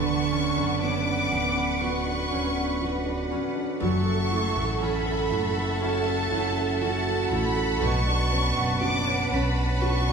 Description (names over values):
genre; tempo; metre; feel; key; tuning
pop ballad; 60 BPM; 4/4; straight; B minor; A4 = 440 Hz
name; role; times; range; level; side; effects
rich studio violin section; second line; 0.0-10.1 s; A5 to D6; -30 LUFS; equal; none
warm concert grand piano; accompaniment; 0.0-10.1 s; D3 to F#5; -29 LUFS; equal; none
clear studio string section; sustained chords; 0.0-10.1 s; A4 to A5; -31 LUFS; right 1 dB; none
picked steel-string acoustic guitar; arpeggios; 0.0-10.1 s; F#2 to F#4; -30 LUFS; right 6 dB; none
sub bass with octave; bass; 0.0-10.1 s; D1 to B1; -29 LUFS; equal; none
room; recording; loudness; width
wet recital hall reverb, RT60 1.6 s; recorded in a church or concert hall, small room ambience; -23 LUFS; side -6 dB against mid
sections
0.0-10.1 A section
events
none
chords
0.0 Bmadd9/D; 3.8 F#m7; 7.8 Bmadd9